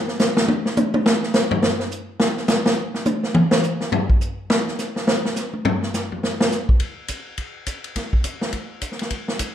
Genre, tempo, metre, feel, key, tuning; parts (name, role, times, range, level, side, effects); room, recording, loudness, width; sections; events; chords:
jazz; 209 BPM; 4/4; swing 60% on 8ths
swinging big-band drum kit; drums; 0.1-9.5 s; hi-hat, kick drum, ride cymbal, snare drum, toms; -19 LUFS; equal
moderate large studio reverb, RT60 0.9 s; dark, warm production; -19 LUFS; side -10 dB against mid
0.0-6.8 A section; 6.8-9.5 B section
drum solo 0.0-6.8